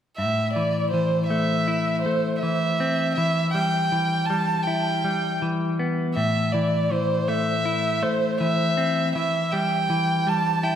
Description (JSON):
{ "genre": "rock", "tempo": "80 BPM", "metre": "4/4", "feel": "straight", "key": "A minor", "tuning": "A4 = 440 Hz", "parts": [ { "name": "rich violin", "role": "melody", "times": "0.2-10.8 s", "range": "C5 to A5", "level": "-24 LUFS", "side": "right 2 dB", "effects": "analog delay" }, { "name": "clean electric guitar", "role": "arpeggios", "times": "0.2-10.8 s", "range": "A2 to E4", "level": "-24 LUFS", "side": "left 2 dB", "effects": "analog delay" } ], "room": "wet concert hall reverb, RT60 1.9 s, small room ambience", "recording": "big arena sound", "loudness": "-21 LUFS", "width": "side -9 dB against mid", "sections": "0.2-10.8 A section", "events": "none", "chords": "0.2 Am; 3.2 Em; 6.2 Am; 9.1 Em" }